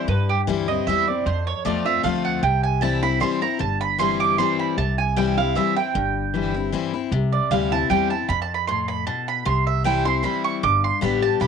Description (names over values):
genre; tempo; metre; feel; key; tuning
bluegrass; 154 BPM; 3/4; straight; C major; A4 = 440 Hz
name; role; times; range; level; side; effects
picked steel-string acoustic guitar; accompaniment; 0.0-11.5 s; F2 to G4; -24 LUFS; left 9 dB; cassette tape
mandolin; stabs; 0.0-11.5 s; G4 to D6; -23 LUFS; right 10 dB; cassette tape
upright bass; bass; 0.1-11.5 s; G1 to G2; -26 LUFS; right 1 dB; none
room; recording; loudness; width
moderate small room reverb, RT60 0.5 s; home recording on cassette; -19 LUFS; side -6 dB against mid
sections
0.0-11.5 A section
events
mandolin solo 0.0-11.5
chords
0.0 C; 1.3 F; 2.4 C; 8.3 F; 9.5 C; 10.6 G